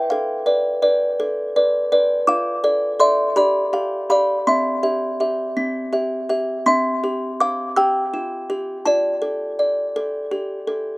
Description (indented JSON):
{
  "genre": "classical, lullaby for music box",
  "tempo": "55 BPM (dotted quarters)",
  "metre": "6/8",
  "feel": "straight",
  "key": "C major",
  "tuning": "A4 = 438 Hz",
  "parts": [
    { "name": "music box", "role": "solo", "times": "0.0-11.0 s", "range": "C4 to E6", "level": "-18 LUFS", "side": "equal", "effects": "slapback echo" }
  ],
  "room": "little or no reverb",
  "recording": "recorded outdoors, with no room sound",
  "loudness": "-18 LUFS",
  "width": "side -25 dB against mid",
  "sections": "0.0-6.7 A section; 6.7-11.0 B section",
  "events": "none",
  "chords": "0.1 Bm7b5/A; 2.3 Dm/F; 3.4 G7; 4.4 C; 8.8 Dm/F"
}